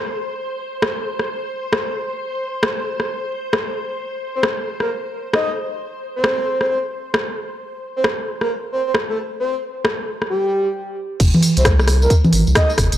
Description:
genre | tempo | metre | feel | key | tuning
UK garage, two-step garage | 133 BPM | 4/4 | swing 64% on 16ths | unclear | A4 = 440 Hz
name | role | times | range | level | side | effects
soft string machine | sustained chords | 0.0-10.3 s | C5 | -29 LUFS | equal | ensemble chorus, sidechain pumping
garage drum kit | drums | 0.8-13.0 s | congas, crash cymbal, hi-hat, rim click, tambourine | -19 LUFS | equal | none
breathy flute-like synth lead | melody | 4.4-12.7 s | G4 to Eb5 | -22 LUFS | equal | lush chorus, analog delay
saturated sub bass | bass | 11.2-13.0 s | F1 to C2 | -16 LUFS | equal | none
electronic kick drum | drums | 11.2-12.9 s | none | -16 LUFS | equal | none
room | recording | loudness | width
light reverb | dry, gritty hardware recording | -18 LUFS | side -12 dB against mid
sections
0.0-11.2 A section; 11.2-13.0 B section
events
drop 11.2-13.0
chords
0.0 N.C.; 11.2 F5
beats
| 0.37 0.82 1.28 1.73 | 2.18 2.63 3.08 3.53 | 3.98 4.43 4.88 5.34 | 5.79 6.24 6.69 7.14 | 7.59 8.04 8.49 8.95 | 9.40 9.85 10.30 10.75 | 11.20 11.65 12.10 12.55

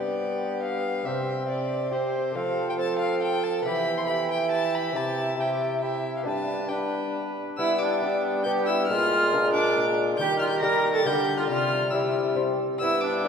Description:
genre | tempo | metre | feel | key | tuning
classical, renaissance-style consort dance | 138 BPM | 3/4 | straight | G mixolydian | A4 = 441 Hz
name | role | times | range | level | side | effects
rich violin | melody | 0.0-13.3 s | C5 to Bb6 | -30 LUFS | left 3 dB | none
rich viola | second line | 0.0-13.3 s | D4 to B4 | -29 LUFS | right 4 dB | none
clear bassoon | accompaniment | 0.0-13.3 s | G3 to E4 | -28 LUFS | left 1 dB | none
lute | accompaniment | 0.0-13.3 s | G2 to Eb5 | -32 LUFS | left 5 dB | none
clear trombone | bass | 0.0-13.3 s | G2 to G3 | -30 LUFS | right 1 dB | none
room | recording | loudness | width
wet church reverb, RT60 3.1 s | heard from further back in the room | -23 LUFS | side -6 dB against mid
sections
0.0-7.6 A section; 7.6-13.3 B section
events
none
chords
0.0 G; 1.1 C; 2.4 F; 3.7 Em; 5.0 C; 6.3 G; 8.9 Bb7; 10.2 Eb; 11.5 C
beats
0.20 0.63 | 1.06 1.49 1.93 | 2.36 2.79 3.22 | 3.65 4.09 4.52 | 4.95 5.39 5.82 | 6.26 6.70 7.15 | 7.59 8.02 8.46 | 8.89 9.33 9.76 | 10.19 10.62 11.06 | 11.49 11.93 12.37 | 12.81 13.24

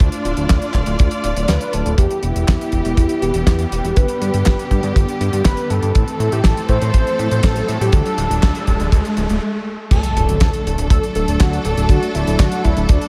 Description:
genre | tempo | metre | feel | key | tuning
italo disco | 121 BPM | 4/4 | straight | unclear | A4 = 438 Hz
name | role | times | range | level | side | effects
rich studio string section | sustained chords | 0.0-13.1 s | D3 to D5 | -25 LUFS | equal | none
fat analog bass | bass | 0.0-13.0 s | D1 to A2 | -22 LUFS | equal | tube saturation
damped 70s drum kit | drums | 0.0-13.1 s | crash cymbal, handclaps, hi-hat, snare drum | -26 LUFS | equal | none
kick drum | drums | 0.0-13.0 s | none | -17 LUFS | equal | none
unison lead | melody | 1.5-13.1 s | D4 to C5 | -25 LUFS | equal | analog chorus, diffuse ambient delay
riser and impact | sound effects | 4.6-11.9 s | none | -28 LUFS | equal | none
room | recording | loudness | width
moderate lush hall reverb, RT60 1.6 s, small room reverb | dreamy mix soaked in reverb | -17 LUFS | mono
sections
0.0-2.0 A section; 2.0-9.9 B section; 9.9-13.1 C section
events
kick drops out 1.5-2.0; stop 9.4-9.9; impact 9.9-11.9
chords
0.0 Dm; 2.0 Em; 4.0 G; 6.0 Am; 7.9 Dm; 9.9 D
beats
| 0.00 0.49 0.99 1.49 | 1.98 2.48 2.97 3.47 | 3.97 4.46 4.96 5.45 | 5.95 6.45 6.94 7.44 | 7.93 8.43 8.93 9.42 | 9.92 10.41 10.91 11.40 | 11.90 12.40 12.89

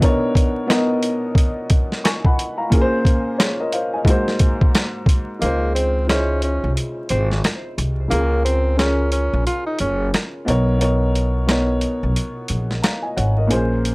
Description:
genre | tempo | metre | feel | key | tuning
hip hop, boom-bap hip-hop | 89 BPM | 4/4 | swing 61% on 16ths | unclear | A4 = 441 Hz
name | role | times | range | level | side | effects
dark upright piano | accompaniment | 0.0-13.9 s | Ab2 to Db6 | -22 LUFS | equal | cassette tape, high-pass filter, low-pass filter
boom bap sampler-style drum kit | drums | 0.0-13.9 s | hi-hat, kick drum, rim click, snare drum | -18 LUFS | equal | none
breathy tenor saxophone | melody | 5.4-10.1 s | Bb3 to F4 | -22 LUFS | right 1 dB | high-pass filter, low-pass filter
upright bass | bass | 5.4-13.9 s | Gb1 to Db2 | -20 LUFS | equal | transformer saturation
room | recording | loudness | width
little or no reverb | dry, gritty hardware recording, transformer saturation, vinyl crackle | -16 LUFS | side -26 dB against mid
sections
0.0-5.4 A section; 5.4-13.9 B section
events
break 0.0-5.4; kick muted 5.4-13.9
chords
0.0 Cbmaj7; 2.7 Bbm7; 4.1 Ab7; 5.4 Dbmaj7; 8.1 Gbmaj7/Db; 10.5 Cbmaj7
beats
| 0.02 0.69 1.37 2.04 | 2.72 3.39 4.07 4.74 | 5.41 6.09 6.76 7.44 | 8.11 8.78 9.46 10.13 | 10.81 11.48 12.15 12.83 | 13.50

